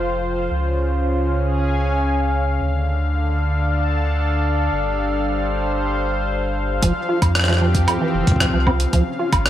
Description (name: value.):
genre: IDM.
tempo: 114 BPM.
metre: 4/4.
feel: straight.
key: unclear.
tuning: A4 = 439 Hz.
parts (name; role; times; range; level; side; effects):
warm analog pad; sustained chords; 0.0-9.5 s; Db3 to A5; -22 LUFS; left 1 dB; wide subtle chorus.
warm sub bass; bass; 0.0-9.5 s; F1 to F2; -21 LUFS; equal; none.
bubbling stepped-filter texture; texture; 0.0-6.8 s; F5; -33 LUFS; right 4 dB; chorus, built-in reverb.
deep acid bass; arpeggios; 6.8-9.3 s; F2 to F4; -23 LUFS; right 2 dB; ensemble chorus, digital delay.
electronic kick drum; drums; 6.8-9.4 s; none; -20 LUFS; equal; none.
jungle sampler-style drum kit; drums; 6.8-9.5 s; hi-hat, rim click, woodblock; -21 LUFS; right 1 dB; gated reverb.
room: moderate plate reverb, RT60 1.4 s.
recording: bright 1980s-style digital production.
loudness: -17 LUFS.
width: side -12 dB against mid.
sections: 0.0-6.8 A section; 6.8-9.5 B section.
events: none.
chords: 0.0 Fadd9; 0.5 Db; 2.6 Dm; 4.7 G7sus4; 6.8 Fadd9; 8.9 Db.